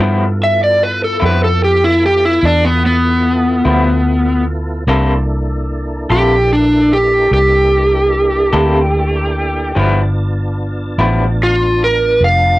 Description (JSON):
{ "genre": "slow blues", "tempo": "49 BPM (dotted quarters)", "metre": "12/8", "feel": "straight", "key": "G mixolydian", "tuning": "A4 = 444 Hz", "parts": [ { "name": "electric guitar through a small old amp", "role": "accompaniment", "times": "0.0-11.2 s", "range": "G2 to A4", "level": "-16 LUFS", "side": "left 2 dB", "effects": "tremolo, cassette tape" }, { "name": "tonewheel organ", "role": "sustained chords", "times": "0.0-12.6 s", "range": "Bb3 to A5", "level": "-24 LUFS", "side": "equal", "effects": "overdrive, chorus vibrato, slow rotary speaker, cassette tape" }, { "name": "vintage muted fingered electric bass", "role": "bass", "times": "0.0-12.6 s", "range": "F1 to G2", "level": "-16 LUFS", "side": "equal", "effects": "none" }, { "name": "overdriven slide guitar", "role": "melody", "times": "0.4-12.6 s", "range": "B3 to F5", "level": "-12 LUFS", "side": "equal", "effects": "none" } ], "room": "light reverb", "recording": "home recording on cassette", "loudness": "-11 LUFS", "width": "side -17 dB against mid", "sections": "0.0-12.6 A section", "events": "electric slide guitar solo 0.0-12.6", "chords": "0.0 G13; 4.9 C13; 9.8 G13", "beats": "1.21 2.43 3.65 | 4.87 6.09 7.32 8.54 | 9.76 10.98 12.21" }